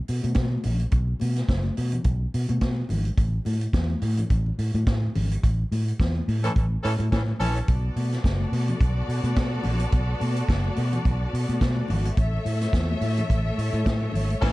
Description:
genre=disco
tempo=107 BPM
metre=4/4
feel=swing 56% on 16ths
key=B minor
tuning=A4 = 440 Hz
part: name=fingered electric bass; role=bass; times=0.1-14.5 s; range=F#1 to B2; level=-24 LUFS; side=equal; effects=none
part: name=vintage drum kit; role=drums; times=0.1-14.5 s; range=crash cymbal, hi-hat, kick drum, snare drum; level=-26 LUFS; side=equal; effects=none
part: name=congas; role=percussion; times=0.2-14.3 s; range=none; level=-34 LUFS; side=left 3 dB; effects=none
part: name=warm horn section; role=stabs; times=6.4-7.6, 14.4-14.5 s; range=E3 to A4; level=-29 LUFS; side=equal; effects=slapback echo
part: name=clear symphonic string section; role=sustained chords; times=7.7-14.5 s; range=A3 to F#5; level=-32 LUFS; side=left 1 dB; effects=none
room=small room ambience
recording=dark, warm production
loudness=-22 LUFS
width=side -19 dB against mid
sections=0.0-14.5 A section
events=band accent 5.4-7.7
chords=0.0 B5; 3.2 A5; 7.7 Bm7; 12.2 A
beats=0.36 | 0.92 1.49 2.05 2.61 | 3.18 3.74 4.30 4.87 | 5.43 5.99 6.55 7.12 | 7.68 8.24 8.80 9.36 | 9.93 10.49 11.05 11.61 | 12.17 12.73 13.30 13.86 | 14.42

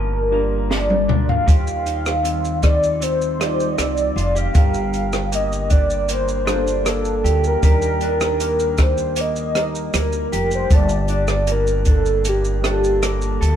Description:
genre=indie pop, bedroom pop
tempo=78 BPM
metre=4/4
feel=straight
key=G minor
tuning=A4 = 441 Hz
part: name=warm velvety synth lead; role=melody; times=0.0-13.4 s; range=G4 to F5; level=-21 LUFS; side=equal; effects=chorus
part: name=electric guitar through a small old amp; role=accompaniment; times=0.0-13.6 s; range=G2 to A4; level=-27 LUFS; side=equal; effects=vibrato effect
part: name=soft electric-piano-like synth keys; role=accompaniment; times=0.0-13.6 s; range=D3 to A5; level=-28 LUFS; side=right 4 dB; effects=chorus, phaser
part: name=upright bass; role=bass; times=0.0-13.6 s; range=F1 to Eb2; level=-22 LUFS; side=equal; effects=none
part: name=compact cocktail drum kit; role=drums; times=0.7-13.6 s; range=hi-hat, kick drum, rim click, shaker, snare drum, toms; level=-18 LUFS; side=equal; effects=none
room=light reverb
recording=band playing live in one room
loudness=-16 LUFS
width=side -9 dB against mid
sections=0.0-13.6 A section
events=drum fill 0.7-1.5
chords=0.0 Gm7; 1.5 Eb69; 4.6 Gm7; 7.6 Ebmaj7; 10.7 Gm9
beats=0.70 | 1.47 2.24 3.01 3.78 | 4.55 5.32 6.09 6.86 | 7.63 8.40 9.17 9.94 | 10.71 11.48 12.25 13.02

